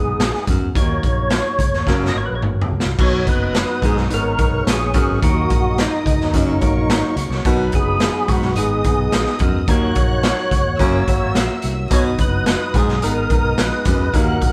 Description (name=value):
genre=uptempo 1960s-style soul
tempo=108 BPM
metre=4/4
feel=straight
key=B major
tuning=A4 = 440 Hz
part: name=percussive tonewheel organ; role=melody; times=0.0-14.5 s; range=D#4 to D#5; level=-24 LUFS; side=equal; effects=overdrive, chorus vibrato, slow rotary speaker
part: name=clear grand piano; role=accompaniment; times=0.0-14.5 s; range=E3 to B4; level=-29 LUFS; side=equal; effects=none
part: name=fingered electric bass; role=bass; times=0.0-14.5 s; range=F#1 to E#2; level=-26 LUFS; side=equal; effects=none
part: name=raw garage drum kit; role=drums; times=0.2-14.5 s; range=crash cymbal, hi-hat, kick drum, snare drum, toms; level=-21 LUFS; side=equal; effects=none
part: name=clear baritone saxophone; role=riff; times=0.5-14.4 s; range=D#2 to B2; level=-26 LUFS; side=equal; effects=none
part: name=warm studio violin section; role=second line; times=3.0-14.5 s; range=B4 to F#6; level=-32 LUFS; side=equal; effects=none
part: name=mellow tonewheel organ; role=sustained chords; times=3.0-14.5 s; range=F#3 to G#4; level=-34 LUFS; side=equal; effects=none
room=moderate stone room reverb, RT60 1.1 s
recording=band playing live in one room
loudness=-18 LUFS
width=mono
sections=0.0-3.0 A section; 3.0-14.5 A section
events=drum fill 1.9-3.0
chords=0.0 G#m; 0.8 D#m; 1.9 F#; 3.0 B; 4.1 G#m; 5.2 D#m; 6.3 F#; 7.5 B; 8.6 G#m; 9.7 D#m; 10.8 F#; 11.9 B; 13.0 G#m